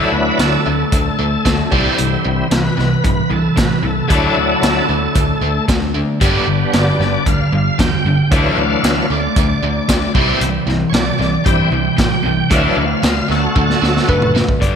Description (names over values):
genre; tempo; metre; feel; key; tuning
classic rock; 114 BPM; 4/4; straight; unclear; A4 = 435 Hz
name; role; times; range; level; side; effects
bright tonewheel organ; sustained chords; 0.0-14.3 s; E3 to G5; -18 LUFS; left 1 dB; overdrive, chorus vibrato, slow rotary speaker
biting overdriven guitar; riff; 0.0-14.6 s; G2 to D4; -20 LUFS; right 9 dB; phaser
distorted electric guitar; riff; 0.0-14.8 s; G2 to D4; -21 LUFS; left 10 dB; distortion, slapback echo
picked electric bass; bass; 0.0-14.8 s; F#1 to A2; -20 LUFS; equal; none
vintage drum kit; drums; 0.4-14.7 s; hi-hat, kick drum, snare drum, toms; -18 LUFS; equal; none
clean lap steel guitar; melody; 14.1-14.8 s; B4 to D5; -18 LUFS; equal; none
room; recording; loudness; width
moderate lush hall reverb, RT60 2.6 s; big arena sound; -13 LUFS; side -7 dB against mid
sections
0.0-14.6 A section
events
tonewheel organ solo 0.0-14.6; drum fill 13.6-14.6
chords
0.0 Dadd9; 1.7 C; 4.1 Dadd9; 6.2 G; 8.3 Dadd9; 10.2 C; 12.5 Dadd9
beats
0.40 0.93 1.46 | 1.99 2.52 3.04 3.57 | 4.10 4.63 5.16 5.68 | 6.21 6.74 7.26 7.79 | 8.31 8.84 9.37 9.89 | 10.41 10.94 11.46 11.98 | 12.51 13.03 13.56 14.09 | 14.61